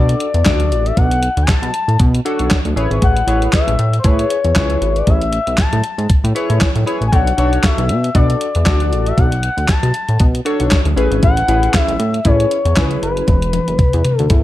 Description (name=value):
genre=early-eighties boogie funk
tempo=117 BPM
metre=4/4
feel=swing 56% on 16ths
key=B dorian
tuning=A4 = 444 Hz
part: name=expressive synth lead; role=melody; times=0.0-14.4 s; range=B4 to A5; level=-20 LUFS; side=left 3 dB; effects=chorus, slapback echo
part: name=chorused polysynth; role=accompaniment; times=0.0-13.3 s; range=C#4 to D5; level=-21 LUFS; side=left 1 dB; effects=none
part: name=chorused synth bass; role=bass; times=0.0-14.4 s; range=E1 to B2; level=-16 LUFS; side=equal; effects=none
part: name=crisp 8-bit digital drum machine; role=drums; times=0.1-14.4 s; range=handclaps, hi-hat, kick drum, snare drum, toms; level=-16 LUFS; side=equal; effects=none
room=digital ambience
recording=none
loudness=-12 LUFS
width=side -14 dB against mid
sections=0.0-14.4 A section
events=drum fill 13.3-14.4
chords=0.0 Bm7; 2.8 Amaj9; 7.1 Bm7; 11.0 Amaj9; 13.3 E7sus2